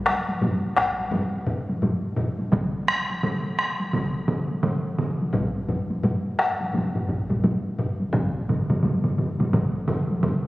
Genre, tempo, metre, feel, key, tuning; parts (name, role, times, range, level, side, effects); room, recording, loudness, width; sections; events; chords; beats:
japanese traditional, taiko drum ensemble; 86 BPM; 4/4; swing 60% on 16ths
taiko ensemble; percussion; 0.1-10.4 s; -28 LUFS; equal
taiko ensemble; percussion; 0.1-10.4 s; -26 LUFS; left 1 dB
taiko ensemble; percussion; 0.8-9.7 s; -33 LUFS; equal
solo taiko drums; percussion; 2.5-10.4 s; -24 LUFS; right 1 dB
wet scoring stage reverb, RT60 1.9 s; recorded on a phone in the room, studio reverb; -22 LUFS; side -18 dB against mid
0.0-10.5 A section
0.42 1.12 1.83 | 2.53 3.23 3.94 4.64 | 5.34 6.04 6.74 7.44 | 8.14 8.84 9.54 10.23